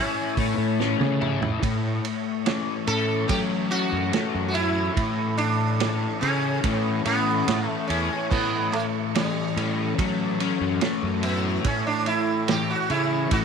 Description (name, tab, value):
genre	psychedelic rock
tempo	72 BPM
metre	4/4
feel	straight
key	A major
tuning	A4 = 440 Hz
part	sitar	melody	0.0-13.4 s	G3 to A4	-27 LUFS	right 3 dB	tape echo
part	ensemble organ-string	sustained chords	0.0-13.4 s	E4 to C#6	-36 LUFS	right 11 dB	ensemble chorus
part	overdriven semi-hollow guitar	riff	0.0-13.4 s	A2 to E4	-27 LUFS	left 13 dB	rotary speaker
part	fuzz fingered electric bass	bass	0.4-13.4 s	E2 to F#3	-27 LUFS	right 1 dB	overdrive
part	vintage drum kit	drums	0.4-13.4 s	crash cymbal, hi-hat, kick drum, ride cymbal, snare drum, toms	-30 LUFS	right 5 dB	none
room	light reverb, studio ambience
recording	1960s-style stereo with parts hard left and right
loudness	-22 LUFS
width	side -6 dB against mid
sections	0.0-1.6 A section; 1.6-13.4 B section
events	drum fill 0.8-1.6; sitar solo 1.6-13.4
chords	0.0 A